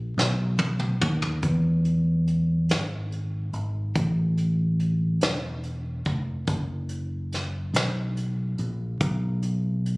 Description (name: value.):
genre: slow gospel.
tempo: 48 BPM (dotted quarters).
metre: 6/8.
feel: straight.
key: unclear.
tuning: A4 = 440 Hz.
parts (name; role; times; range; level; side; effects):
fingered electric bass; bass; 0.0-10.0 s; F1 to E2; -24 LUFS; equal; none.
vintage brush drum kit; drums; 0.2-10.0 s; hi-hat, kick drum, snare drum, toms; -27 LUFS; equal; none.
room: little or no reverb.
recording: recorded on a phone in the room, studio reverb, compression.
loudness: -24 LUFS.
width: side -26 dB against mid.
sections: 0.0-1.4 A section; 1.4-10.0 B section.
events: drum fill 0.2-1.4.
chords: none.